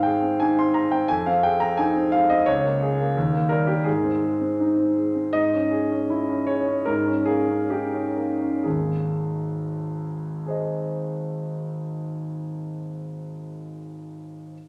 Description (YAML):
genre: classical, romantic character piece for solo piano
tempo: 62-88 BPM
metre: 2/4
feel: rubato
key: Ab major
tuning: A4 = 441 Hz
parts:
  - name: clear concert grand piano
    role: solo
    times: 0.0-14.5 s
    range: Ab1 to C6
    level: -24 LUFS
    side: equal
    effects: none
room: wet recital hall reverb, RT60 1.4 s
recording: none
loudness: -24 LUFS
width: mono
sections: 0.0-5.3 A section; 5.3-8.6 B section; 8.6-12.3 C section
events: slowing down 4.6-8.6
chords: 0.0 Ab; 1.1 Fm7; 2.5 Bbm7/Db; 3.2 Eb7; 3.9 Ab; 5.3 Dbm/Ab; 6.9 Eb7/Ab; 8.6 Ab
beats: 0.40 | 1.10 1.78 | 2.47 3.15 | 3.86 4.59 | 5.33 6.10 | 6.88 7.71 | 8.64 9.55 | 10.46 11.37